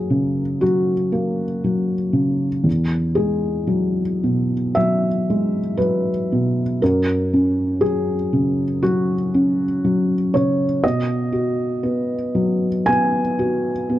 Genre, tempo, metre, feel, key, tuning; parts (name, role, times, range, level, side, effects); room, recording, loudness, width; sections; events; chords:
neoclassical minimalist piano; 59 BPM; 4/4; rubato; A4 = 440 Hz
felt-muted upright piano; solo; 0.0-14.0 s; E2 to G#5; -17 LUFS; equal
small room ambience; dry, close 1970s-style studio recording; -17 LUFS; side -14 dB against mid
0.0-14.0 A section
0.0 F#; 2.7 Eadd9; 6.8 F#; 10.8 B